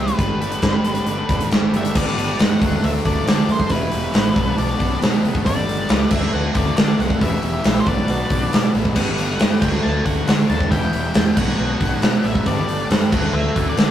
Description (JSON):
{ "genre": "classic rock", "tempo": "137 BPM", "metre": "4/4", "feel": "straight", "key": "unclear", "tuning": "A4 = 441 Hz", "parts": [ { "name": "octave-fuzz lead guitar", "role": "melody", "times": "0.0-13.9 s", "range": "B4 to A5", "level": "-27 LUFS", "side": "left 1 dB", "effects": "distortion" }, { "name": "tonewheel organ", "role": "sustained chords", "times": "0.0-13.9 s", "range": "C4 to F5", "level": "-36 LUFS", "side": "equal", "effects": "none" }, { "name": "biting overdriven guitar", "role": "riff", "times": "0.0-13.9 s", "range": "G2 to E4", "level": "-29 LUFS", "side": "right 4 dB", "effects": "none" }, { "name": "distorted electric guitar", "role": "riff", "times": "0.0-13.9 s", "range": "E2 to D4", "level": "-29 LUFS", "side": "left 5 dB", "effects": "overdrive" }, { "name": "fuzz fingered electric bass", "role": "bass", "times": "0.0-13.9 s", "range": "E1 to D3", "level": "-25 LUFS", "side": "equal", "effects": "overdrive" }, { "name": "big rock drum kit", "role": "drums", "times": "0.1-13.9 s", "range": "crash cymbal, hi-hat, kick drum, snare drum", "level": "-18 LUFS", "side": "equal", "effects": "none" }, { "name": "fuzz guitar", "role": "riff", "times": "1.9-13.9 s", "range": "G2 to E4", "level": "-28 LUFS", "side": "equal", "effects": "none" }, { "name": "cowbell", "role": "percussion", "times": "2.0-13.9 s", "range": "none", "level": "-36 LUFS", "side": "right 2 dB", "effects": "none" } ], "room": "light reverb", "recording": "rough rehearsal-room recording", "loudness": "-16 LUFS", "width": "side -11 dB against mid", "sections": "0.0-1.9 A section; 1.9-13.9 B section", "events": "none", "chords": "0.2 G; 2.6 D; 3.7 Em; 4.4 Bm; 5.5 G; 6.1 D; 7.2 Em; 7.9 Bm; 9.0 G; 9.6 D; 10.7 Em; 11.4 Bm; 12.5 G; 13.1 D" }